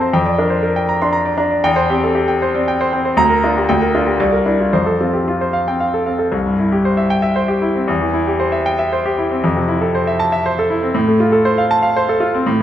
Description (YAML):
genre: classical, virtuoso piano study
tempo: 118 BPM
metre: 3/4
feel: rubato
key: F major, C major from 6.3 s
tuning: A4 = 440 Hz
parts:
  - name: bright concert grand piano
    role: solo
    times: 0.0-12.6 s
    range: C2 to C6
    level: -14 LUFS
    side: equal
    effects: none
room: wet recital hall reverb, RT60 1.7 s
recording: none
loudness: -14 LUFS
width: side -11 dB against mid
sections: 0.0-6.3 A section; 6.3-12.6 B section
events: none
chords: 0.1 Gm7/F; 1.6 C/E; 3.2 Gm7/D; 4.2 C9; 4.7 F; 6.3 C; 7.9 C/E; 9.4 Fmaj7; 10.9 F/A